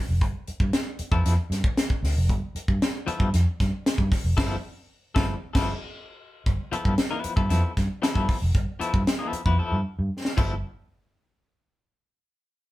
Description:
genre	funk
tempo	115 BPM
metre	4/4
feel	straight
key	G mixolydian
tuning	A4 = 436 Hz
part	vintage muted fingered electric bass	bass	0.1-10.6 s	F1 to G2	-25 LUFS	equal	none
part	tight funk drum kit	drums	0.2-10.5 s	crash cymbal, hi-hat, kick drum, snare drum	-25 LUFS	equal	none
part	electric guitar at the edge of break-up	accompaniment	1.1-10.5 s	F3 to B4	-29 LUFS	left 4 dB	tremolo
room	moderate studio reverb, RT60 0.6 s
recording	band playing live in one room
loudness	-22 LUFS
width	side -17 dB against mid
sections	0.0-6.5 A section; 6.5-10.6 B section; 10.6-12.7 C section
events	band accent 4.4-6.5; drum fill 9.6-10.6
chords	0.0 G13; 10.6 N.C.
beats	| 0.21 0.73 1.25 1.77 | 2.29 2.81 3.33 3.85 | 4.38 4.90 5.42 5.94 | 6.46 6.98 7.50 8.02 | 8.55 9.07 9.59 10.11

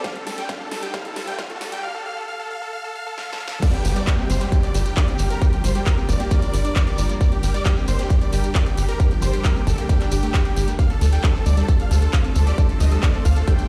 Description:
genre	uplifting trance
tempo	134 BPM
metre	4/4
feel	straight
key	G minor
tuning	A4 = 440 Hz
part	big supersaw lead	melody	0.0-13.7 s	G4 to G5	-32 LUFS	equal	sidechain pumping, digital delay
part	lush unison pad	sustained chords	0.0-13.7 s	G3 to C5	-36 LUFS	equal	chorus, phaser, sidechain pumping
part	unison pluck	arpeggios	0.0-13.6 s	F3 to G4	-34 LUFS	equal	phaser, sidechain pumping, digital delay
part	big-room dance drum kit	drums	0.0-13.7 s	crash cymbal, handclaps, hi-hat, snare drum	-34 LUFS	equal	none
part	electronic kick drum	drums	0.0-13.6 s	none	-21 LUFS	equal	none
part	riser and downlifter	sound effects	0.0-7.2 s	none	-38 LUFS	equal	none
part	shekere	percussion	3.6-13.7 s	none	-40 LUFS	equal	none
part	tight sequencer bass	bass	3.8-13.4 s	G1 to D2	-22 LUFS	equal	sidechain pumping
room	digital ambience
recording	played on a big sound system in a bare room, stone room reverb, high-pass filter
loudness	-21 LUFS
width	mono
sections	0.0-3.6 A section; 3.6-13.7 B section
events	build-up 0.0-3.6; drum fill 0.0-1.8, 3.2-3.6; riser 0.0-1.8; drop 3.6-13.7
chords	0.0 Dm7; 3.6 Gm7; 10.8 Dm7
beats	| 0.04 0.49 0.94 1.39 | 1.83 2.28 2.73 3.18 | 3.62 4.07 4.52 4.97 | 5.42 5.86 6.31 6.76 | 7.21 7.66 8.10 8.55 | 9.00 9.45 9.89 10.34 | 10.79 11.24 11.69 12.13 | 12.58 13.03 13.48

